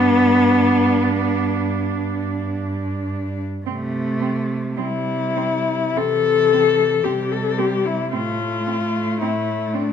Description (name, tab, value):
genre	classical, lyrical piece for cello ensemble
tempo	48-58 BPM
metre	4/4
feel	rubato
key	C major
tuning	A4 = 438 Hz
part	muted cello	melody	0.0-9.9 s	D4 to A4	-21 LUFS	left 6 dB	none
part	muted cello	second line	0.0-9.8 s	C4 to D4	-26 LUFS	right 10 dB	none
part	muted cello	accompaniment	0.0-9.9 s	E3 to B3	-22 LUFS	left 1 dB	none
part	muted cello	bass	0.0-9.9 s	G2 to C3	-25 LUFS	right 3 dB	none
room	moderate recital hall reverb, RT60 1.6 s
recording	none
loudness	-18 LUFS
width	side -8 dB against mid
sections	0.0-3.7 A section; 3.7-9.9 B section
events	none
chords	0.0 G; 3.7 C; 8.1 F/A